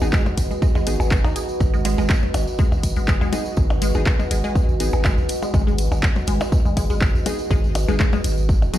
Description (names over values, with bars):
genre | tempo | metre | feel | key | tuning
minimal techno | 122 BPM | 4/4 | swing 54% on 16ths | G# minor | A4 = 439 Hz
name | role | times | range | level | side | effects
wavetable chord stab | stabs | 0.0-8.8 s | B3 to G#4 | -31 LUFS | left 1 dB | dub echo
punchy sub bass | bass | 0.0-8.7 s | D#1 to G#1 | -22 LUFS | equal | tube saturation, sidechain pumping
percussion blips | percussion | 0.0-8.7 s | none | -31 LUFS | left 3 dB | small room reverb, dub echo
tambourine | percussion | 0.0-8.8 s | none | -36 LUFS | right 2 dB | none
deep dark ambient pad | texture | 0.0-8.8 s | F#4 to D#5 | -28 LUFS | right 1 dB | chorus, built-in reverb, sidechain pumping
resonant blip pluck | riff | 0.1-8.8 s | F#3 to G#4 | -28 LUFS | left 1 dB | chorus, phaser, sidechain pumping, dub echo
electronic kick drum | drums | 0.1-8.6 s | none | -19 LUFS | equal | small room reverb
house drum kit | drums | 0.1-8.8 s | handclaps, hi-hat | -26 LUFS | equal | small room reverb
room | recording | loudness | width
light reverb | played on a big sound system in a bare room, stone room reverb | -17 LUFS | side -13 dB against mid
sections
0.0-8.8 A section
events
none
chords
0.0 G#m